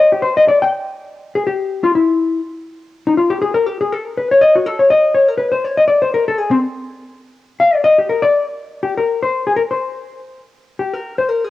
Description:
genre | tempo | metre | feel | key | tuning
jazz | 244 BPM | 4/4 | swing 59% on 8ths | Eb major | A4 = 436 Hz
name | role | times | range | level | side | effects
hollow-body jazz guitar | solo | 0.0-11.5 s | C4 to G5 | -13 LUFS | left 2 dB | cassette tape
room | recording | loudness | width
wet spring reverb, RT60 1.7 s | home recording on cassette | -13 LUFS | side -14 dB against mid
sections
0.9-8.8 A section; 8.8-11.5 B section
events
hollow-body jazz guitar solo 0.9-8.8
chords
none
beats
0.21 0.45 0.70 | 0.94 1.19 1.44 1.68 | 1.93 2.17 2.42 2.67 | 2.91 3.16 3.40 3.65 | 3.90 4.14 4.39 4.64 | 4.88 5.13 5.37 5.62 | 5.87 6.11 6.36 6.60 | 6.85 7.09 7.34 7.58 | 7.83 8.08 8.32 8.57 | 8.81 9.06 9.30 9.55 | 9.80 10.04 10.29 10.54 | 10.78 11.03 11.28

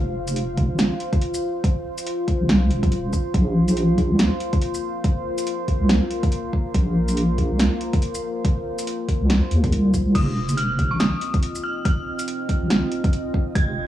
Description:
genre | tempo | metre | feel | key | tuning
deep dubstep | 141 BPM | 4/4 | swing 59% on 16ths, half-time | unclear | A4 = 438 Hz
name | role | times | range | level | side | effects
deep dark ambient pad | sustained chords | 0.0-13.9 s | Bb3 to F5 | -27 LUFS | equal | chorus, built-in reverb
deep soft wobble bass | bass | 0.0-13.9 s | Eb1 to Eb2 | -20 LUFS | equal | chorus
deep house drum kit | drums | 0.3-13.7 s | crash cymbal, hi-hat, shaker, snare drum | -24 LUFS | right 1 dB | overdrive
electronic kick drum | drums | 0.6-13.7 s | none | -21 LUFS | equal | overdrive
dark detuned synth bell | melody | 10.1-13.9 s | Db6 to Ab6 | -28 LUFS | equal | chorus, dub echo
room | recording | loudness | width
light reverb, digital ambience | dry, gritty hardware recording, transformer saturation, cassette tape, small room ambience | -19 LUFS | side -13 dB against mid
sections
0.0-13.9 A section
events
none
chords
0.0 F7(no3); 3.3 Bbsus2; 10.2 F7(no3)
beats
0.36 0.79 1.21 | 1.64 2.06 2.49 2.92 | 3.34 3.77 4.19 4.62 | 5.04 5.47 5.89 6.32 | 6.75 7.17 7.60 8.02 | 8.45 8.87 9.30 9.72 | 10.15 10.57 11.00 11.43 | 11.85 12.28 12.70 13.13 | 13.55

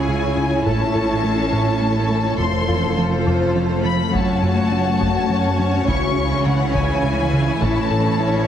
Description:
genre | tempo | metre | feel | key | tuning
cinematic, hybrid orchestral and electronic film score | 69 BPM (dotted quarters) | 6/8 | straight | unclear | A4 = 441 Hz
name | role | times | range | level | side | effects
rich symphonic violin section | melody | 0.0-8.5 s | F#5 to C#6 | -25 LUFS | left 5 dB | none
warm symphonic violin section | second line | 0.0-8.5 s | E4 to C#5 | -25 LUFS | left 2 dB | none
dark symphonic viola section | accompaniment | 0.0-8.5 s | E3 to F4 | -24 LUFS | equal | none
ethereal airy pad | sustained chords | 0.0-8.5 s | E3 to F5 | -26 LUFS | left 1 dB | ensemble chorus, built-in reverb, phaser
rich symphonic cello section | bass | 0.0-8.5 s | F2 to C#3 | -25 LUFS | right 1 dB | none
rich symphonic double bass section | bass | 0.0-8.5 s | F1 to C#2 | -26 LUFS | right 2 dB | none
thumb-piano-like synth pluck | arpeggios | 0.1-8.4 s | C#3 to A4 | -29 LUFS | equal | chorus, phaser
round analog bass | riff | 0.1-8.4 s | C#2 to A3 | -24 LUFS | right 1 dB | none
solo taiko drums | drums | 0.7-8.2 s | none | -29 LUFS | equal | none
room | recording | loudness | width
wet scoring stage reverb, RT60 1.7 s | heavily compressed radio sound, multiband compression | -16 LUFS | side -9 dB against mid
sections
0.0-8.5 A section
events
none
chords
0.0 C#m; 0.7 A; 2.4 F; 4.1 F#m; 5.9 C#m; 7.6 A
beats
| 0.66 1.53 | 2.40 3.27 | 4.14 5.01 | 5.88 6.75 | 7.62

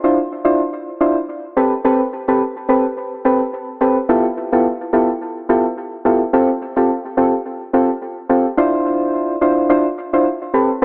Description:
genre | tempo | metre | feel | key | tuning
afrobeats | 107 BPM | 4/4 | swing 55% on 16ths | D dorian | A4 = 443 Hz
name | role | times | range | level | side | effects
soft electric-piano-like synth keys | solo | 0.0-10.8 s | B3 to C5 | -17 LUFS | equal | chorus, tape echo
room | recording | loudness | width
light reverb | home recording on cassette, small speaker sound | -17 LUFS | mono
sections
0.0-8.6 A section; 8.6-10.8 B section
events
none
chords
0.0 Dm9; 1.6 Am9; 4.1 Fmaj9#11; 6.3 G9sus4; 8.6 Dm9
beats
0.17 0.73 1.29 | 1.85 2.41 2.97 3.53 | 4.09 4.65 5.21 5.78 | 6.34 6.90 7.46 8.02 | 8.58 9.14 9.70 10.26 | 10.82

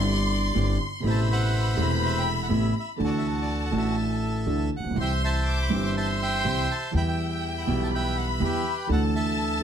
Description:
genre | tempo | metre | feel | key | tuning
tango | 122 BPM | 4/4 | rubato | unclear | A4 = 440 Hz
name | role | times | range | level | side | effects
bandoneon | melody | 0.0-9.6 s | F#4 to C6 | -31 LUFS | right 1 dB | none
warm studio violin section | second line | 0.0-9.6 s | G5 to D6 | -31 LUFS | left 3 dB | none
warm concert grand piano | accompaniment | 0.0-9.6 s | E1 to G4 | -27 LUFS | right 2 dB | none
upright bass | bass | 0.0-9.6 s | E1 to E2 | -27 LUFS | equal | none
room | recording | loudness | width
light reverb | none | -23 LUFS | side -8 dB against mid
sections
0.0-9.6 A section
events
none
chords
0.0 Cadd9/G; 1.0 Amadd9; 3.0 Dadd9; 5.0 C; 6.9 Em; 8.9 Dadd9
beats
0.07 0.56 | 1.04 1.53 2.02 2.51 | 3.00 3.49 3.98 4.48 | 4.97 5.47 5.96 6.46 | 6.94 7.43 7.92 8.41 | 8.90 9.39

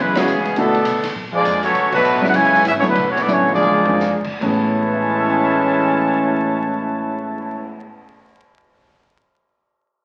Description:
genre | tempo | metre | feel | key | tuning
jazz, big band swing | 144-206 BPM | 4/4 | swing 61% on 8ths | A major | A4 = 441 Hz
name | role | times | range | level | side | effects
mellow trumpet section | melody | 0.0-7.8 s | G#3 to A5 | -20 LUFS | equal | none
warm trombone section | second line | 0.0-7.8 s | A2 to E4 | -23 LUFS | equal | none
upright bass | bass | 0.0-7.8 s | E1 to B2 | -36 LUFS | equal | none
warm grand piano | accompaniment | 0.2-8.8 s | A2 to B6 | -25 LUFS | equal | none
swinging big-band drum kit | drums | 0.2-7.6 s | crash cymbal, cymbal swell, hi-hat, kick drum, ride cymbal, snare drum, toms | -32 LUFS | equal | none
room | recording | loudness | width
wet large studio reverb, RT60 1.4 s | very old 78 rpm record, vinyl crackle | -17 LUFS | mono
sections
0.0-4.4 A section; 4.4-7.7 B section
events
band accent 0.1, 1.9; slowing down 1.7-4.4; drum fill 3.3-4.0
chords
0.0 F#9sus4; 0.6 E7sus4; 1.2 Bb7; 1.7 D6; 2.3 F#9sus4; 3.0 E7sus4; 3.6 Bb7; 4.4 Amaj9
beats
0.28 | 0.57 0.86 1.15 1.44 | 1.74 2.03 2.33 2.63 | 2.95 3.28 3.63 4.00 | 4.40 4.82 5.24 5.65 | 6.07 6.49 6.90 7.32

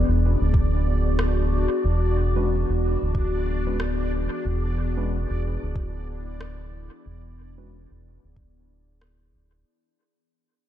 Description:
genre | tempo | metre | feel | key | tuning
ambient dub | 92 BPM | 4/4 | swing 60% on 16ths | E mixolydian | A4 = 440 Hz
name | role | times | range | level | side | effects
warbly tape-like pad | sustained chords | 0.0-9.7 s | E3 to D5 | -28 LUFS | left 3 dB | chorus, built-in reverb, phaser
round analog bass | bass | 0.0-9.6 s | D1 to E1 | -24 LUFS | equal | none
bubbling stepped-filter texture | texture | 0.0-9.7 s | D4 to D5 | -36 LUFS | right 1 dB | chorus, built-in reverb
electronic kick drum | drums | 0.5-8.5 s | none | -24 LUFS | equal | overdrive
electronic rim click | drums | 1.2-9.2 s | none | -37 LUFS | equal | overdrive, dub echo
mellow tine electric piano | stabs | 2.4-7.8 s | G#3 to B4 | -36 LUFS | left 1 dB | medium stereo tremolo, low-pass filter, dub echo
room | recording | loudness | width
light reverb | none | -22 LUFS | side -11 dB against mid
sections
0.0-9.7 A section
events
fade-out 0.0-9.7; filter sweep on analog synth bass 0.0-9.7; filter sweep on tine electric piano 0.0-9.7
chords
0.0 E9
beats
0.54 1.19 | 1.84 2.49 3.15 3.80 | 4.45 5.10 5.75 6.41 | 7.06 7.71 8.36 9.01

